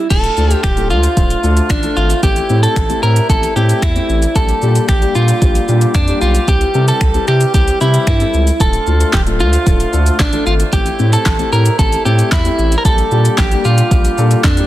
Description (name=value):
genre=dance-pop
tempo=113 BPM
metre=4/4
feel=straight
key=D minor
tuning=A4 = 440 Hz
part: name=clean electric guitar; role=melody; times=0.0-14.7 s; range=D4 to Bb4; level=-17 LUFS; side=right 1 dB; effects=tape echo
part: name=dark grand piano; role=accompaniment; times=0.1-14.7 s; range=G3 to C5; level=-21 LUFS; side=left 6 dB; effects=sidechain pumping
part: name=warm woodwind section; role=sustained chords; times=0.1-14.7 s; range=C3 to G4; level=-26 LUFS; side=right 2 dB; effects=sidechain pumping
part: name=saturated sub bass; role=bass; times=0.1-14.6 s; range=D1 to C3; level=-14 LUFS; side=equal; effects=sidechain pumping
part: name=deep house drum kit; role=drums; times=0.1-14.7 s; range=crash cymbal, finger snaps, handclaps, hi-hat, kick drum, shaker, snare drum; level=-16 LUFS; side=equal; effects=soft clipping on snare
room=digital ambience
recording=dense, heavily limited modern master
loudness=-11 LUFS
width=side -14 dB against mid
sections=0.1-14.7 A section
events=none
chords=0.1 Dm; 2.2 Am7; 4.4 Gm/Bb; 6.5 C; 8.6 Dm; 10.7 Am7; 12.9 Gm/Bb